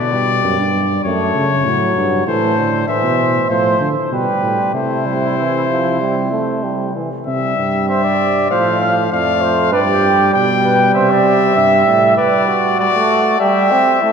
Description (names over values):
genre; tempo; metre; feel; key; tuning
classical, imitative canzona for brass ensemble; 98 BPM; 4/4; straight; C major; A4 = 440 Hz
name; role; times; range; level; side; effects
clear trumpet; melody; 0.0-14.1 s; B4 to G5; -18 LUFS; left 7 dB; none
clear euphonium; accompaniment; 0.0-14.1 s; D3 to C4; -18 LUFS; right 2 dB; none
warm tuba; bass; 0.0-12.2 s; F2 to D3; -20 LUFS; right 2 dB; none
mellow flugelhorn; second line; 2.3-14.1 s; E4 to F5; -17 LUFS; right 3 dB; none
room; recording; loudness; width
wet church reverb, RT60 3.2 s; none; -13 LUFS; side -6 dB against mid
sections
0.0-7.3 A section; 7.3-14.1 B section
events
none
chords
0.0 G/B; 1.0 F#m; 2.3 Am; 3.5 F/A; 4.1 G/B; 4.7 C; 8.5 F/A; 9.7 G; 11.0 C; 12.2 G; 13.4 C/G